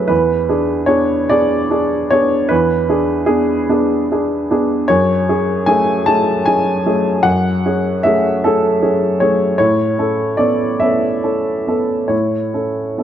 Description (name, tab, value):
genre	neoclassical minimalist piano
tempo	50 BPM (dotted quarters)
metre	6/8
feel	rubato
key	F# minor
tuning	A4 = 440 Hz
part	warm upright piano	solo	0.0-13.0 s	E2 to A5	-13 LUFS	equal	none
room	moderate scoring stage reverb, RT60 2.1 s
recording	none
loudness	-13 LUFS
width	side -10 dB against mid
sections	0.0-13.0 A section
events	none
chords	0.1 E7; 4.9 F#madd9; 9.6 Aadd9